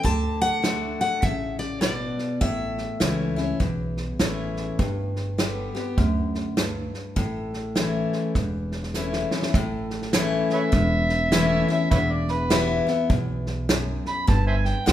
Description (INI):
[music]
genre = honky-tonk and classic country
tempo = 101 BPM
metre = 4/4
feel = swing 62% on 8ths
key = unclear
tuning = A4 = 441 Hz
[part]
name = picked steel-string acoustic guitar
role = melody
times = 0.0-3.6 s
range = D5 to A5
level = -27 LUFS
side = left 2 dB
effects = none
[part]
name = picked steel-string acoustic guitar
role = accompaniment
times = 0.0-14.9 s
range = E2 to G4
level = -26 LUFS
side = left 3 dB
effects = none
[part]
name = upright bass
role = bass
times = 0.0-14.9 s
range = E1 to D2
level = -27 LUFS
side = right 1 dB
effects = none
[part]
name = natural country drum kit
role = drums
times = 0.0-14.9 s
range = hi-hat, kick drum, snare drum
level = -26 LUFS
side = right 1 dB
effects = none
[part]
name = overdriven harmonica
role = second line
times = 10.5-14.9 s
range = B4 to B5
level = -26 LUFS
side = right 2 dB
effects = none
[sound]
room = moderate recital hall reverb, RT60 1.4 s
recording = minimal, uncompressed stereo recording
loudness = -22 LUFS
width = side -12 dB against mid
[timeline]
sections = 0.0-9.5 A section; 9.5-14.9 B section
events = drum fill 8.9-9.5; harmonica solo 9.5-14.9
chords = 0.0 D; 2.4 A; 4.8 G; 7.2 A; 11.9 Em; 14.3 N.C.